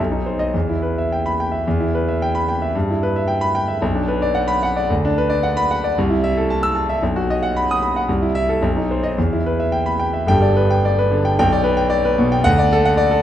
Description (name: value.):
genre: classical, virtuoso piano study.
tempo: 112 BPM.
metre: 2/4.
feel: rubato.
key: E minor.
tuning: A4 = 439 Hz.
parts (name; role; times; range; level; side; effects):
bright concert grand piano; solo; 0.0-13.2 s; G1 to E6; -16 LUFS; equal; none.
room: wet recital hall reverb, RT60 1.5 s.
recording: dark, warm production.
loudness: -16 LUFS.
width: side -11 dB against mid.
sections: 0.0-1.7 A section; 1.7-10.3 A section; 10.3-13.2 B section.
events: none.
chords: 0.0 B; 0.5 Em; 2.7 Em/G; 3.8 Bm; 4.9 Bm/D; 6.0 Am/C; 7.0 B; 8.1 Am/C; 8.6 B; 9.2 Em; 10.3 G; 11.4 G/B; 12.4 D.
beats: | 0.54 1.10 | 1.66 2.21 | 2.74 3.28 | 3.81 4.35 | 4.89 5.42 | 5.95 6.48 | 7.01 7.54 | 8.07 8.61 | 9.16 9.73 | 10.29 10.84 | 11.38 11.91 | 12.45 12.98.